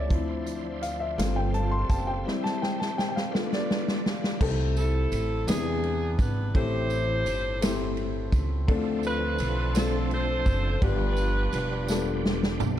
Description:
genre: slow gospel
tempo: 56 BPM (dotted quarters)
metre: 6/8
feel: straight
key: C major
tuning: A4 = 440 Hz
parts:
  - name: clear upright piano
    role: accompaniment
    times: 0.0-12.8 s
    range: G2 to C6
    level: -31 LUFS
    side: left 4 dB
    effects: none
  - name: bright tonewheel organ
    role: sustained chords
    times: 0.0-4.4, 8.7-12.8 s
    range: F3 to C5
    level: -37 LUFS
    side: right 6 dB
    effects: slow rotary speaker, overdrive, chorus vibrato
  - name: warm French horn section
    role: sustained chords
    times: 0.0-4.4 s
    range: F3 to C5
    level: -41 LUFS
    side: equal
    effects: none
  - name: upright bass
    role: bass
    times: 0.0-12.8 s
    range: E1 to E2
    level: -28 LUFS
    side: equal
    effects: none
  - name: swinging big-band drum kit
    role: drums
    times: 0.1-12.8 s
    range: crash cymbal, hi-hat, kick drum, ride cymbal, snare drum, toms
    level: -29 LUFS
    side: equal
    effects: none
  - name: tambourine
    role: percussion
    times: 0.5-12.8 s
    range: none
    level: -44 LUFS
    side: right 8 dB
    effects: none
  - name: clear saxophone section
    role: melody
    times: 4.8-12.2 s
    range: B3 to C5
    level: -30 LUFS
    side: right 1 dB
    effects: none
room: studio reverb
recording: dark, warm production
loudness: -24 LUFS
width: side -11 dB against mid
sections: 0.0-4.4 A section; 4.4-12.8 B section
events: upright piano solo 0.0-4.4; drum fill 2.3-4.4, 11.9-12.8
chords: 0.1 Dm9; 1.2 G9sus4; 2.3 C/G; 3.3 G7; 4.4 C6; 5.5 E7b13; 6.5 Am7; 8.7 Dm7; 10.8 G7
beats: | 0.11 1.18 | 2.26 3.33 | 4.40 5.47 | 6.54 7.61 | 8.68 9.75 | 10.82 11.89

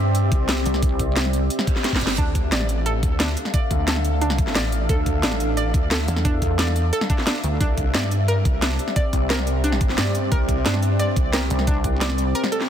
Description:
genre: dark technical drum and bass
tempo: 177 BPM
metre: 4/4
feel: straight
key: unclear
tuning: A4 = 444 Hz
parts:
  - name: deep dark ambient pad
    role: sustained chords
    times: 0.0-12.7 s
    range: C4 to F5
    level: -26 LUFS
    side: left 1 dB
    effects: chorus, built-in reverb, sidechain pumping
  - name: snarling distorted saw bass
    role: bass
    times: 0.0-11.5 s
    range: G1 to G2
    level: -23 LUFS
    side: equal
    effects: overdrive, sidechain pumping
  - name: drum and bass drum kit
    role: drums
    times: 0.1-12.7 s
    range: hi-hat, snare drum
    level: -25 LUFS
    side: equal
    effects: none
  - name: electronic kick drum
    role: drums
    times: 0.3-11.9 s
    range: none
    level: -22 LUFS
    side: equal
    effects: none
  - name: pulsing pluck wobble bass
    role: bass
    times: 0.7-1.5, 6.1-7.6, 11.5-12.3 s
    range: C2 to E2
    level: -22 LUFS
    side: equal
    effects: chorus
  - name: reverse cymbal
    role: sound effects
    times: 1.6-2.2 s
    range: none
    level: -33 LUFS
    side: right 5 dB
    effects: none
  - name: analog pluck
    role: arpeggios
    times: 2.2-12.6 s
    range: D4 to D5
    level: -28 LUFS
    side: right 2 dB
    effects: chorus, sidechain pumping, tape echo
room: light reverb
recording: dense, heavily limited modern master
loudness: -18 LUFS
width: side -9 dB against mid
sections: 0.0-12.7 A section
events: reverse cymbal 1.6-2.2; drum fill 1.8-2.2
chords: 0.0 Cadd9; 2.2 Dm; 7.6 Cadd9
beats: 0.15 0.49 | 0.82 1.16 1.50 1.84 | 2.18 2.52 2.86 3.20 | 3.54 3.88 4.21 4.55 | 4.89 5.23 5.57 5.91 | 6.25 6.59 6.93 7.27 | 7.61 7.94 8.28 8.62 | 8.96 9.30 9.64 9.98 | 10.32 10.66 10.99 11.33 | 11.67 12.01 12.35 12.69

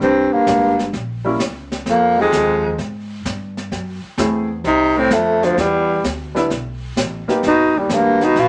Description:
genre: jazz, small-group swing and bop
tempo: 129 BPM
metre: 4/4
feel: swing 69% on 8ths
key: unclear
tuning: A4 = 442 Hz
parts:
  - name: breathy tenor saxophone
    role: melody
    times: 0.0-8.5 s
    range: F3 to F4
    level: -18 LUFS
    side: equal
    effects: none
  - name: bright baritone saxophone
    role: second line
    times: 0.0-8.5 s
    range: D2 to C3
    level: -22 LUFS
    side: equal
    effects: none
  - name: upright bass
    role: bass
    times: 0.0-8.5 s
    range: G1 to Ab2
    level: -30 LUFS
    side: equal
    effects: none
  - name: jazz brush drum kit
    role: drums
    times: 0.0-8.5 s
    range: brushed snare drum, hi-hat, kick drum, snare drum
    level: -28 LUFS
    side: equal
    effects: none
  - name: clear upright piano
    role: accompaniment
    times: 1.2-7.4 s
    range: G3 to Ab4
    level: -22 LUFS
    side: equal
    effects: none
room: moderate studio reverb, RT60 0.6 s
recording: nothing above 10.5 kHz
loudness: -18 LUFS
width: mono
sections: 0.0-8.5 A section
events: none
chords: 0.0 C7(no3); 1.9 Fm7; 3.7 F#m7b5; 4.6 F5; 5.6 Em7; 7.4 Gaug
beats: | 0.01 0.47 0.94 1.40 | 1.86 2.33 2.79 3.25 | 3.72 4.18 4.64 5.11 | 5.57 6.04 6.50 6.97 | 7.43 7.90 8.36

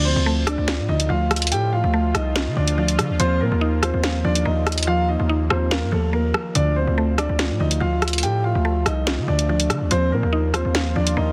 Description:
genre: hip hop, drill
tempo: 143 BPM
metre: 4/4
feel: half-time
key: D phrygian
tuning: A4 = 442 Hz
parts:
  - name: dark baby grand piano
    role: melody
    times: 0.0-11.3 s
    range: A3 to G5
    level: -27 LUFS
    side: equal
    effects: digital delay
  - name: mallet-like synth pluck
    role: accompaniment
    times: 0.0-11.3 s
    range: D3 to F5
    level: -28 LUFS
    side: equal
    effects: chorus
  - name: sweeping resonant pad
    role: sustained chords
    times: 0.0-11.3 s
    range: Eb3 to F4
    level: -33 LUFS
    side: equal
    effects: chorus, tremolo
  - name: distorted 808-style bass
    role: bass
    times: 0.0-11.3 s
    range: C2 to D3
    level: -24 LUFS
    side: equal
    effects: distortion
  - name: drill drum kit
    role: drums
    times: 0.5-11.2 s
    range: hi-hat, rim click, snare drum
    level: -27 LUFS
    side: equal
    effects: none
room: little or no reverb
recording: dense, heavily limited modern master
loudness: -21 LUFS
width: mono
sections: 0.0-11.3 A section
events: hi-hats muted 4.9-6.6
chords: 0.0 Dm; 3.2 Ebsus2; 6.6 Dm; 9.9 Ebsus2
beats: 0.26 0.68 1.10 | 1.52 1.94 2.36 2.78 | 3.20 3.62 4.04 4.46 | 4.88 5.29 5.71 6.13 | 6.55 6.97 7.39 7.81 | 8.23 8.65 9.07 9.49 | 9.91 10.33 10.75 11.17

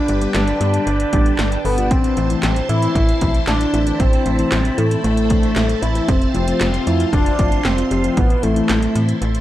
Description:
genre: synth-pop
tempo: 115 BPM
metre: 4/4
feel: straight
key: A minor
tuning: A4 = 440 Hz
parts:
  - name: fat analog lead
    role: melody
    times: 0.0-9.0 s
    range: A3 to E4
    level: -20 LUFS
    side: equal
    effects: chorus, tape echo, shimmer reverb
  - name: phased string machine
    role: sustained chords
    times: 0.0-9.4 s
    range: D4 to C6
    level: -27 LUFS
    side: equal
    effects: ensemble chorus, phaser, shimmer reverb
  - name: mellow tine electric piano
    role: accompaniment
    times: 0.1-9.2 s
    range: E3 to A4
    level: -24 LUFS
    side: left 3 dB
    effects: phaser, shimmer reverb
  - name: slap-like FM bass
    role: bass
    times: 0.1-9.4 s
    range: F1 to A2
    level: -20 LUFS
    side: equal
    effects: none
  - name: 80s electronic pad drums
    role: drums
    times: 0.1-9.4 s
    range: handclaps, hi-hat, kick drum, snare drum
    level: -20 LUFS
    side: equal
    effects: none
room: light reverb, digital ambience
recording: dark, warm production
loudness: -15 LUFS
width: side -14 dB against mid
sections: 0.0-9.4 A section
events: none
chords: 0.0 G; 1.9 Am; 6.1 F; 8.2 Am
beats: 0.35 0.87 1.39 | 1.91 2.43 2.95 3.48 | 4.00 4.52 5.04 5.56 | 6.08 6.61 7.13 7.65 | 8.17 8.69 9.21

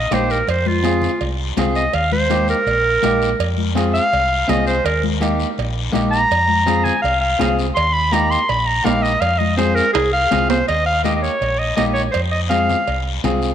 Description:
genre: latin, cumbia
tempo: 165 BPM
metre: 4/4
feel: straight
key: F minor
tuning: A4 = 440 Hz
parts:
  - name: clear clarinet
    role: melody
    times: 0.0-13.0 s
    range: F4 to C6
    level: -18 LUFS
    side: right 1 dB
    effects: slapback echo
  - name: hollow-body short-scale fingered electric bass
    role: bass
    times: 0.0-13.5 s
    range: Bb1 to F2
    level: -22 LUFS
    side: right 1 dB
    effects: none
  - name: electric guitar at the edge of break-up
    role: accompaniment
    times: 0.1-13.5 s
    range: Bb3 to Ab4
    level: -23 LUFS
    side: equal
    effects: none
  - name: congas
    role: percussion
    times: 0.1-13.4 s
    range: none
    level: -25 LUFS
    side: left 9 dB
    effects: none
  - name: cowbell and timbales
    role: percussion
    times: 0.1-13.4 s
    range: none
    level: -27 LUFS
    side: right 11 dB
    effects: none
  - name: guiro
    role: percussion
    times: 0.1-13.5 s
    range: none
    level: -31 LUFS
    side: left 10 dB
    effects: none
room: moderate echo chamber reverb, RT60 2.4 s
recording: 1960s-style stereo with parts hard left and right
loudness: -15 LUFS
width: side -9 dB against mid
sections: 0.0-10.7 A section; 10.7-13.5 B section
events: clarinet solo 0.0-10.7; drum fill 10.0-10.7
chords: 0.5 Fm; 1.9 Eb; 3.4 Fm; 4.9 Eb; 6.3 Fm; 7.8 Eb; 9.2 Fm; 10.7 Eb; 12.1 Fm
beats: 0.12 | 0.48 0.85 1.21 1.58 | 1.94 2.31 2.67 3.04 | 3.40 3.76 4.13 4.49 | 4.86 5.22 5.58 5.95 | 6.31 6.68 7.04 7.40 | 7.77 8.13 8.50 8.86 | 9.22 9.59 9.95 10.32 | 10.69 11.05 11.41 11.78 | 12.15 12.51 12.88 13.24

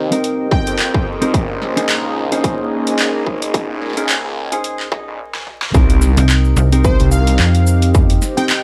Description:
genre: glitch hop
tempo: 109 BPM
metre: 4/4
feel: swing 56% on 16ths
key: C phrygian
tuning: A4 = 439 Hz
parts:
  - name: warm analog pad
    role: sustained chords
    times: 0.0-8.6 s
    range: Bb3 to Eb5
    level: -26 LUFS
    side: equal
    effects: chorus, sidechain pumping
  - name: phased detuned saw bass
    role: bass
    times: 0.0-7.4 s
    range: Ab1 to F2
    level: -22 LUFS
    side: equal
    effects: phaser, overdrive, high-pass filter
  - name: deep dark ambient pad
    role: texture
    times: 0.0-5.2 s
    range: Bb4 to Ab5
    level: -30 LUFS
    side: equal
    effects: chorus, built-in reverb, sidechain pumping
  - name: mellow electric guitar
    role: stabs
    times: 0.1-8.5 s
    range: C4 to Eb5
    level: -24 LUFS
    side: equal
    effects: sidechain pumping, low-pass filter, tape echo
  - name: dubstep drum kit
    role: drums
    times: 0.1-8.6 s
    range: handclaps, hi-hat, shaker, snare drum, toms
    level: -23 LUFS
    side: equal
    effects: none
  - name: plucky unison lead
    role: melody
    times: 0.5-1.1, 6.8-8.6 s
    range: C5 to G5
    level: -28 LUFS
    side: equal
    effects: tape echo
  - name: electronic kick drum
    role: drums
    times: 0.5-8.1 s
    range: none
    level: -18 LUFS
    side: equal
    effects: distortion
  - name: slap-like FM bass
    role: bass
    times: 6.2-8.2 s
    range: C2 to F2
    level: -14 LUFS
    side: equal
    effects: none
room: digital ambience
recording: vinyl crackle, high-pass filter, faint mains hum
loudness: -15 LUFS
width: mono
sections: 0.0-5.7 A section; 5.7-8.6 B section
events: build-up 0.0-5.7; filter sweep on clean electric guitar 0.0-5.7; filter sweep 0.0-5.7; drum fill 5.3-5.7; drop 5.7-8.6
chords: 0.0 Cm7; 1.3 Bbm11; 5.7 Cm7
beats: 0.24 0.79 | 1.34 1.89 2.44 2.99 | 3.54 4.09 4.64 5.20 | 5.75 6.30 6.85 7.40 | 7.95 8.50

